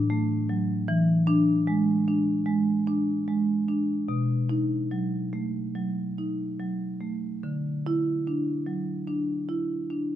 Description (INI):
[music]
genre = classical, contemporary piece for solo marimba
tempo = 73 BPM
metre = 4/4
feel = rubato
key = unclear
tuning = A4 = 444 Hz
[part]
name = marimba with soft mallets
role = solo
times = 0.0-10.2 s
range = A2 to E4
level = -24 LUFS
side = equal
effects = none
[sound]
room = moderate recital hall reverb, RT60 1.4 s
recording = close, detailed microphones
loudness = -24 LUFS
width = side -11 dB against mid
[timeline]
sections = 0.0-10.2 A section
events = none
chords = 0.0 D/A; 0.9 E7; 4.1 B7; 7.4 Dadd9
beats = 0.09 | 0.87 1.66 2.46 3.27 | 4.09 4.92 5.75 6.59 | 7.43 8.26 9.08 9.90